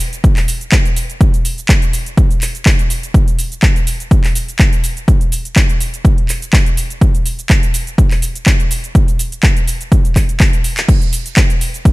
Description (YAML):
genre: house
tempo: 124 BPM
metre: 4/4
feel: swing 54% on 16ths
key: none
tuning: none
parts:
  - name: house drum kit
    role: drums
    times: 0.0-11.9 s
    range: cabasa, crash cymbal, handclaps, hi-hat, ride cymbal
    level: -19 LUFS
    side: equal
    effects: overdrive, sidechain pumping on hats, sidechain pumping on perc, sidechain pumping on cymbals
  - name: electronic kick drum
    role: drums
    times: 0.2-11.9 s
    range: none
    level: -11 LUFS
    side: equal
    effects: overdrive
room: little or no reverb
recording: none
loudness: -11 LUFS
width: side -21 dB against mid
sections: 0.0-11.9 A section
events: drum fill 10.4-10.9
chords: none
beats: 0.24 0.72 | 1.21 1.69 2.17 2.66 | 3.14 3.63 4.11 4.59 | 5.08 5.56 6.05 6.53 | 7.01 7.50 7.98 8.47 | 8.95 9.43 9.92 10.40 | 10.88 11.37 11.85